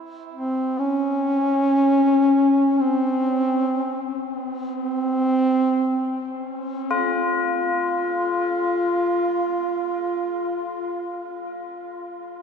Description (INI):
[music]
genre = ambient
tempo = free time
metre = none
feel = none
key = unclear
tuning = A4 = 440 Hz
[part]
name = tubular bells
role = arpeggios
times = 0.0-12.4 s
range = F4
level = -27 LUFS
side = left 3 dB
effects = ping-pong delay
[part]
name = mellow duduk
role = melody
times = 0.3-11.7 s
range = C4 to F4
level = -21 LUFS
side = equal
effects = ping-pong delay
[sound]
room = wet cathedral reverb, RT60 6.4 s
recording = none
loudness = -20 LUFS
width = side -6 dB against mid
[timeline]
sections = 0.0-6.9 A section; 6.9-10.9 B section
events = none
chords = none